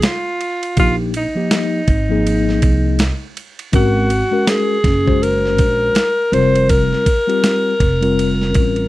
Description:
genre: hip hop, jazz-hop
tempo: 81 BPM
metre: 4/4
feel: swing 59% on 16ths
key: unclear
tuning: A4 = 443 Hz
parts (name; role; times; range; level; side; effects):
- breathy alto saxophone; melody; 0.0-8.9 s; Eb4 to C5; -18 LUFS; equal; none
- mellow tine electric piano; accompaniment; 0.0-8.9 s; F3 to C5; -19 LUFS; left 3 dB; slow stereo tremolo
- dusty soul sampler-style drum kit; drums; 0.0-8.9 s; hi-hat, kick drum, ride cymbal, snare drum; -18 LUFS; right 1 dB; none
- upright bass; bass; 0.8-8.8 s; F1 to C2; -18 LUFS; right 1 dB; none
room: light reverb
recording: dry, close 1970s-style studio recording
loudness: -13 LUFS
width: side -17 dB against mid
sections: 0.0-8.9 A section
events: none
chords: 0.0 Bb9sus4; 3.7 Ab9sus4; 6.3 Fsus24

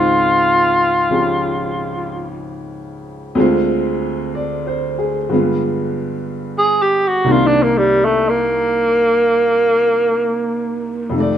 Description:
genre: jazz ballad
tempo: 62 BPM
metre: 4/4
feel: swing 66% on 8ths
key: unclear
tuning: A4 = 441 Hz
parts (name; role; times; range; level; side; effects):
- breathy tenor saxophone; melody; 0.0-11.2 s; G3 to Ab4; -14 LUFS; equal; none
- clear upright piano; accompaniment; 0.0-11.4 s; C2 to D5; -19 LUFS; equal; none
room: moderate echo chamber reverb, RT60 1.6 s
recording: minimal, uncompressed stereo recording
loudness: -14 LUFS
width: side -10 dB against mid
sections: 0.0-11.4 A section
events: tenor saxophone solo 0.0-11.4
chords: 0.0 Dbmaj9; 3.4 Dm7b5; 5.3 G7b9; 7.2 Cm9

